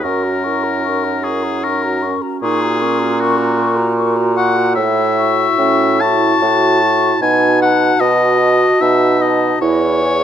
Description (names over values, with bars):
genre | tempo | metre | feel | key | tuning
classical, slow romantic movement for wind quintet | 76 BPM | 3/4 | rubato | unclear | A4 = 440 Hz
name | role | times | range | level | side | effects
mellow hollow silver concert flute | melody | 0.0-10.2 s | G#5 to C#6 | -22 LUFS | left 12 dB | none
clear oboe | second line | 0.0-10.2 s | F#4 to A5 | -16 LUFS | left 4 dB | none
dark clarinet | accompaniment | 0.0-10.2 s | C#4 to G#4 | -21 LUFS | right 6 dB | none
mellow French horn | accompaniment | 0.0-10.2 s | E4 to A#4 | -24 LUFS | left 1 dB | none
warm bassoon | bass | 0.0-10.2 s | E2 to B2 | -17 LUFS | right 2 dB | none
room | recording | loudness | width
moderate recital hall reverb, RT60 1.6 s | close, detailed microphones | -12 LUFS | side -9 dB against mid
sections
0.0-10.2 A section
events
none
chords
0.1 F#; 2.4 F#/A#; 4.8 F#m7/A; 7.2 B7; 9.6 E